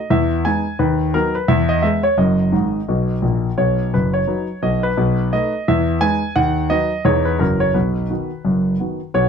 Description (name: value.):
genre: jazz, stride piano.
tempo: 172 BPM.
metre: 4/4.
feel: swing 58% on 8ths.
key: B major.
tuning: A4 = 440 Hz.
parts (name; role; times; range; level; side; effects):
clear concert grand piano; solo; 0.0-9.3 s; F#1 to G#5; -16 LUFS; equal; none.
room: light reverb.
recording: close, detailed microphones.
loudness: -16 LUFS.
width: side -7 dB against mid.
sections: 0.0-9.1 A section.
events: grand piano fill 2.5-3.6.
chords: 0.1 Emaj7; 0.8 B/D#; 1.5 E; 2.2 D#madd11/F#; 2.9 Bmaj7; 3.6 B; 5.0 B7; 5.7 Emaj7; 6.4 B/D#; 7.1 Emaj7; 7.4 F#7; 7.8 B.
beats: 0.09 0.44 | 0.79 1.14 1.49 1.83 | 2.18 2.53 2.88 3.23 | 3.58 3.92 4.27 4.62 | 4.97 5.32 5.67 6.01 | 6.36 6.71 7.06 7.41 | 7.75 8.10 8.45 8.80 | 9.14.